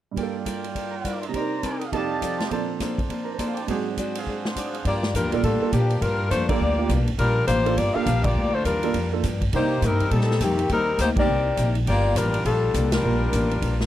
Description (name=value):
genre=jazz, big band swing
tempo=205 BPM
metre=4/4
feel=swing 61% on 8ths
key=G minor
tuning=A4 = 440 Hz
part: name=clear baby grand piano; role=accompaniment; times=0.1-13.8 s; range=F2 to A5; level=-29 LUFS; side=right 10 dB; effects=none
part: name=picked steel-string acoustic guitar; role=accompaniment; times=0.2-13.8 s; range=G2 to D5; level=-31 LUFS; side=left 4 dB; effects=none
part: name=clear trumpet section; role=stabs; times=0.2-4.9 s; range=D4 to Eb6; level=-31 LUFS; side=right 3 dB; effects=none
part: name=swinging big-band drum kit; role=drums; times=0.2-13.9 s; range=hi-hat, kick drum, ride cymbal, snare drum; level=-30 LUFS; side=equal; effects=none
part: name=upright bass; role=bass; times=4.8-13.9 s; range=G1 to C3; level=-24 LUFS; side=equal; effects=none
part: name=clear saxophone section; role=melody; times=4.9-13.9 s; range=Eb3 to F5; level=-24 LUFS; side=left 3 dB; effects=none
room=studio reverb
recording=dry, close 1970s-style studio recording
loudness=-21 LUFS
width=side -13 dB against mid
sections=0.2-4.8 A section; 4.8-13.9 B section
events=band accent 6.5, 8.2, 11.1, 12.9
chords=0.2 Gm7; 1.3 Cm9; 1.9 F13; 2.5 Bbmaj9; 3.7 Ab7#11; 4.8 Gm7; 9.5 Cm7; 11.9 Gm7